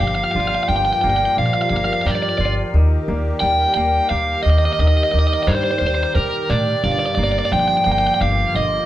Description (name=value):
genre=post-rock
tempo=88 BPM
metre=3/4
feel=straight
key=G minor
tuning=A4 = 440 Hz
part: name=crunchy overdriven guitar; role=melody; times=0.0-8.9 s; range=Bb4 to G5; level=-18 LUFS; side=right 1 dB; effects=none
part: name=evolving wavetable pad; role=sustained chords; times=0.0-8.9 s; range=D3 to Bb4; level=-30 LUFS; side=left 1 dB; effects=phaser, built-in reverb
part: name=twangy electric guitar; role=arpeggios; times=0.0-8.9 s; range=G2 to G4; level=-26 LUFS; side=left 2 dB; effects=spring reverb
part: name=upright bass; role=bass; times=0.0-8.8 s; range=G1 to Eb3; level=-20 LUFS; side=equal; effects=none
part: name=vibraphone with soft mallets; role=arpeggios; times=0.4-8.9 s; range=D5 to D6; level=-28 LUFS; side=right 3 dB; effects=none
room=wet studio reverb, RT60 0.6 s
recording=band playing live in one room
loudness=-15 LUFS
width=side -13 dB against mid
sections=0.0-8.9 A section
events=none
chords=0.0 Gm7; 2.7 Ebmaj7; 6.8 Gm7